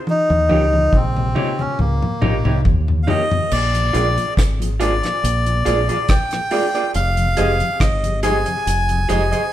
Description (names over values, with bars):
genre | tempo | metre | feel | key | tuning
lovers rock reggae | 70 BPM | 4/4 | swing 54% on 16ths | unclear | A4 = 441 Hz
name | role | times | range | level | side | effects
melodica | melody | 0.1-9.5 s | Bb3 to Ab5 | -20 LUFS | left 1 dB | none
deep reggae drum kit | drums | 0.1-9.5 s | crash cymbal, hi-hat, kick drum, rim click, toms | -20 LUFS | equal | none
mellow tonewheel organ | accompaniment | 0.3-9.4 s | Eb2 to Eb4 | -29 LUFS | left 2 dB | slow rotary speaker
deep dub fingered electric bass | bass | 0.3-9.3 s | F1 to Eb2 | -20 LUFS | equal | none
overdriven tine electric piano | accompaniment | 0.5-9.2 s | Bb3 to Ab4 | -29 LUFS | left 2 dB | phaser, dub echo
electric guitar through a small old amp | stabs | 0.5-9.4 s | Eb4 to Eb5 | -23 LUFS | right 4 dB | none
room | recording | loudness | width
moderate stone room reverb, RT60 0.9 s | band playing live in one room | -15 LUFS | side -12 dB against mid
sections
0.0-3.5 A section; 3.5-9.5 B section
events
drum fill 0.1-3.5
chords
0.1 Eb7; 3.5 Bb7; 6.9 Fm7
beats
| 0.07 0.93 1.79 2.65 | 3.51 4.37 5.23 6.09 | 6.95 7.80 8.66